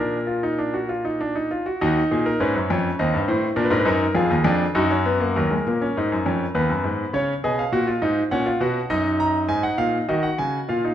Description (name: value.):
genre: classical, baroque-style 3-part fugue for grand piano.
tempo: 101 BPM.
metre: 3/4.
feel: straight.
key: Eb minor.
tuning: A4 = 442 Hz.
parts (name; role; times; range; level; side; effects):
bright concert grand piano; solo; 0.0-10.9 s; Eb2 to Bb5; -19 LUFS; equal; none.
room: wet recital hall reverb, RT60 1.5 s.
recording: none.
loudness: -19 LUFS.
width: side -10 dB against mid.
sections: 0.0-1.8 A section; 1.8-5.4 B section; 5.4-10.9 A section.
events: none.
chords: 0.0 Bb; 1.8 Ebm; 3.0 Am7b5/Eb; 3.6 Bb7; 4.8 Ebm/Gb; 5.4 Ebm; 6.5 Abm/Eb; 7.1 Db; 8.3 Gb/Bb; 8.9 Ebm/Gb; 10.1 Ebm.